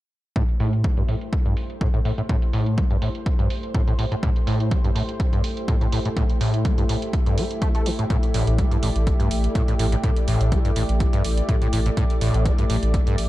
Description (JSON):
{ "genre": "acid house", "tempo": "124 BPM", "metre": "4/4", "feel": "swing 53% on 16ths", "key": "A minor", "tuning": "A4 = 442 Hz", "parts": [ { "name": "lush unison pad", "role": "sustained chords", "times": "0.4-13.3 s", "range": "A3 to D5", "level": "-29 LUFS", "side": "left 1 dB", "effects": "chorus, sidechain pumping" }, { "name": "overdriven acid bass", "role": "riff", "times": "0.4-13.2 s", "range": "G2 to A3", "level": "-24 LUFS", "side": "equal", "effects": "tube saturation, wide subtle chorus, cassette tape, sidechain pumping, digital delay" }, { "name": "electronic hi-hat", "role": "drums", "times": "0.4-13.3 s", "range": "none", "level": "-36 LUFS", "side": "right 5 dB", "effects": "low-pass filter on hats, low-pass filter on room" }, { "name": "electronic kick drum", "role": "drums", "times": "0.4-13.0 s", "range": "none", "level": "-22 LUFS", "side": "equal", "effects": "none" }, { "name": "saturated sub bass", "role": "bass", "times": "8.3-13.3 s", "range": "A1", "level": "-22 LUFS", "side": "equal", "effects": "sidechain pumping" } ], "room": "digital ambience", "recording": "dark, warm production", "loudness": "-19 LUFS", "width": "side -16 dB against mid", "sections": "0.4-13.3 A section", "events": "filter sweep on acid bass 0.4-13.3", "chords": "0.4 Am7" }